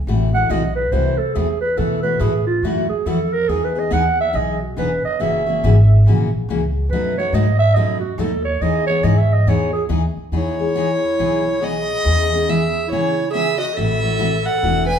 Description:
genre	acoustic string swing (jazz manouche)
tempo	140 BPM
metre	4/4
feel	swing 62% on 8ths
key	E major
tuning	A4 = 440 Hz
part	upright bass	bass	0.0-15.0 s	E1 to C#3	-19 LUFS	equal	none
part	picked steel-string acoustic guitar	accompaniment	0.1-14.8 s	B2 to G#4	-22 LUFS	left 3 dB	none
part	growling clarinet	second line	0.3-15.0 s	E4 to F#5	-21 LUFS	right 4 dB	none
part	warm violin	melody	10.3-15.0 s	C#5 to G#5	-20 LUFS	left 1 dB	none
room	wet large studio reverb, RT60 1.2 s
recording	band playing live in one room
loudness	-16 LUFS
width	side -8 dB against mid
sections	0.0-10.3 A section; 10.3-15.0 B section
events	clarinet solo 0.0-10.3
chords	0.1 Am6; 1.8 B7sus4; 3.5 Emaj7; 5.2 F#7; 6.9 B7; 8.6 Emaj7; 12.1 C#m7/E; 13.8 Am6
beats	| 0.08 0.50 0.93 1.36 | 1.79 2.21 2.64 3.07 | 3.50 3.92 4.35 4.78 | 5.21 5.63 6.06 6.49 | 6.92 7.34 7.77 8.20 | 8.63 9.05 9.48 9.91 | 10.34 10.77 11.20 11.62 | 12.05 12.48 12.91 13.34 | 13.77 14.20 14.63

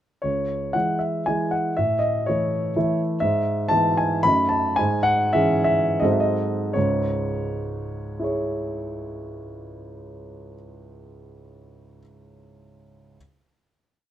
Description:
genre	classical, romantic triple-time dance for piano with dotted rhythms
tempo	77-133 BPM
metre	3/4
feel	rubato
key	C# minor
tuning	A4 = 439 Hz
part	warm grand piano	solo	0.2-13.2 s	C#2 to B5	-21 LUFS	equal	none
room	light reverb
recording	close, detailed microphones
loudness	-20 LUFS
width	side -11 dB against mid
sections	0.2-6.8 A section; 6.8-11.0 final chord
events	slowing down 2.5-6.8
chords	0.2 C#m; 1.8 A; 3.2 E/G#; 4.2 D#dim/F#; 4.8 C#m/G#; 6.0 G#7b9; 6.8 C#m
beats	| 0.23 0.74 1.27 | 1.76 2.27 2.76 | 3.22 3.71 4.25 | 4.78 5.35 6.02 | 6.75 7.47 8.20 | 8.92 9.64 10.36

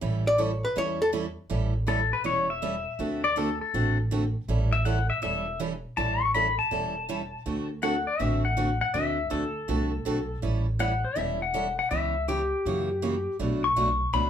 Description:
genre	country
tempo	161 BPM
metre	4/4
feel	swing 66% on 8ths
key	A mixolydian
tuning	A4 = 441 Hz
part	picked steel-string acoustic guitar	accompaniment	0.0-14.3 s	B2 to A4	-31 LUFS	right 3 dB	none
part	upright bass	bass	0.0-14.3 s	E1 to F#2	-30 LUFS	right 1 dB	none
part	archtop guitar, miked and amplified	melody	0.3-1.1 s	A4 to D5	-24 LUFS	left 1 dB	none
part	pedal steel guitar	second line	1.9-14.3 s	G4 to C#6	-27 LUFS	left 4 dB	none
room	wet studio ambience, RT60 0.5 s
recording	band playing live in one room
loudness	-24 LUFS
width	side -9 dB against mid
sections	0.0-1.5 A section; 1.5-14.3 A section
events	hollow-body jazz guitar solo 0.0-1.5; pedal steel guitar solo 1.5-14.3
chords	0.0 A7; 3.0 D7; 4.5 A7; 7.5 D9; 10.4 A7; 11.9 C#m7b5; 12.7 F#7b9; 13.4 Bm7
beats	| 0.02 0.39 0.76 1.13 | 1.50 1.88 2.25 2.62 | 2.99 3.37 3.74 4.11 | 4.48 4.86 5.23 5.60 | 5.97 6.34 6.71 7.09 | 7.46 7.83 8.20 8.57 | 8.94 9.32 9.69 10.06 | 10.43 10.80 11.17 11.54 | 11.91 12.29 12.65 13.03 | 13.40 13.77 14.14

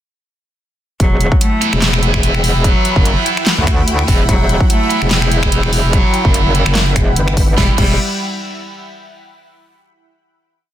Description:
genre	heavy wobble dubstep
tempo	146 BPM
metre	4/4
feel	swing 54% on 16ths, half-time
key	E minor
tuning	A4 = 441 Hz
part	rich cello	melody	1.0-7.9 s	F#3 to A3	-21 LUFS	equal	digital delay
part	lush unison pad	sustained chords	1.2-7.8 s	E4 to B5	-22 LUFS	equal	chorus, phaser, sidechain pumping
part	metallic wobble bass	bass	1.0-8.0 s	E1 to D2	-15 LUFS	equal	chorus, overdrive
part	big-room dance drum kit	drums	1.0-7.9 s	crash cymbal, finger snaps, handclaps, hi-hat, snare drum	-19 LUFS	equal	small room ambience
part	electronic kick drum	drums	1.0-7.9 s	none	-14 LUFS	equal	small room ambience
part	heavy high-gain guitar	stabs	1.6-7.9 s	E3 to E4	-21 LUFS	right 4 dB	distortion, digital delay
room	light reverb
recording	dense, heavily limited modern master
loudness	-11 LUFS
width	side -12 dB against mid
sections	1.0-7.6 drop; 7.6-9.2 final chord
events	drop 1.0-7.6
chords	1.0 Emadd9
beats	| 1.00 1.41 1.82 2.23 | 2.64 3.06 3.47 3.88 | 4.29 4.70 5.11 5.52 | 5.93 6.34 6.75 7.16 | 7.58

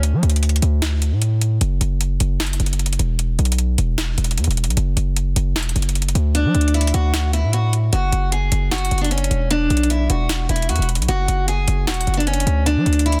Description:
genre	hip hop, trap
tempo	152 BPM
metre	4/4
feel	half-time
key	unclear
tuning	A4 = 440 Hz
part	hard-hitting 808-style bass	bass	0.0-13.2 s	E1 to F#3	-20 LUFS	equal	none
part	trap drum kit	drums	0.0-13.2 s	hi-hat, snare drum	-27 LUFS	equal	none
part	picked acoustic archtop guitar	melody	6.3-13.2 s	C#4 to G#4	-24 LUFS	equal	low-pass filter
room	little or no reverb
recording	dense, heavily limited modern master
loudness	-19 LUFS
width	mono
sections	0.0-13.2 A section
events	break 0.0-6.3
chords	0.0 D5; 1.6 Esus2; 3.2 E5; 4.8 N.C.; 6.3 D; 7.9 F#5; 9.5 E5; 11.1 F#5; 12.7 D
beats	| 0.03 0.43 0.82 1.22 | 1.61 2.01 2.40 2.79 | 3.19 3.58 3.98 4.37 | 4.77 5.16 5.56 5.95 | 6.35 6.74 7.14 7.53 | 7.93 8.32 8.72 9.11 | 9.51 9.90 10.29 10.69 | 11.09 11.48 11.87 12.27 | 12.66 13.06

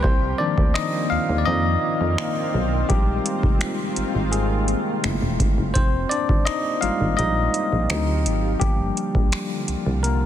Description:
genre	contemporary R&B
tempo	84 BPM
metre	4/4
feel	straight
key	F dorian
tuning	A4 = 441 Hz
part	bell-like tine electric piano	accompaniment	0.0-10.3 s	Eb3 to F5	-23 LUFS	left 2 dB	medium stereo tremolo
part	granular cloud pad	sustained chords	0.0-10.3 s	D3 to G4	-29 LUFS	right 1 dB	built-in reverb, sidechain pumping
part	solid FM bass	bass	0.0-10.3 s	Fb1 to F2	-23 LUFS	equal	none
part	booming analog drum machine	drums	0.0-10.2 s	finger snaps, hi-hat, kick drum	-23 LUFS	equal	overdrive, soft clipping on snare, vintage 12-bit sampler grit
room	digital ambience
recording	dense, heavily limited modern master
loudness	-19 LUFS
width	side -11 dB against mid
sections	0.0-10.3 A section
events	tine electric piano solo 0.0-10.3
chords	0.0 Cm11; 2.9 Bb9sus4; 5.0 Gbm11; 5.8 Fm11; 7.9 D7b9; 8.6 Gm7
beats	| 0.04 0.76 1.47 2.19 | 2.90 3.61 4.33 5.04 | 5.76 6.47 7.18 7.90 | 8.61 9.33 10.04

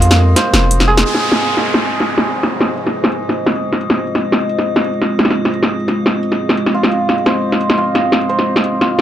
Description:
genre	half-time drum and bass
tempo	174 BPM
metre	4/4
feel	half-time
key	F minor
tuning	A4 = 441 Hz
part	dark analog pad	sustained chords	0.0-9.0 s	Ab3 to Eb5	-21 LUFS	equal	chorus
part	santur	arpeggios	0.0-3.9, 6.7-9.0 s	F4 to C5	-18 LUFS	right 2 dB	vintage 12-bit sampler grit, analog delay
part	long sustained 808-style bass	bass	0.0-1.0 s	F1 to F2	-12 LUFS	equal	none
part	drum and bass drum kit	drums	0.0-9.0 s	hi-hat, snare drum	-15 LUFS	equal	low-pass filter on hats, low-pass filter on perc, low-pass filter on snare, low-pass filter on room
part	metallic inharmonic drone	texture	0.0-9.0 s	Eb5	-25 LUFS	left 2 dB	chorus, built-in reverb, phaser
part	downlifter	sound effects	1.1-3.8 s	none	-22 LUFS	equal	none
room	little or no reverb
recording	dry, gritty hardware recording, transformer saturation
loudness	-12 LUFS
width	side -11 dB against mid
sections	0.0-1.1 A section; 1.1-9.0 B section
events	filter sweep on santur 0.0-1.1; band accent 1.0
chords	0.0 Fm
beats	0.02 0.36 0.71 | 1.05 1.40 1.74 2.09 | 2.43 2.77 3.12 3.46 | 3.81 4.16 4.50 4.84 | 5.19 5.53 5.88 6.22 | 6.57 6.91 7.26 7.60 | 7.95 8.29 8.64 8.98

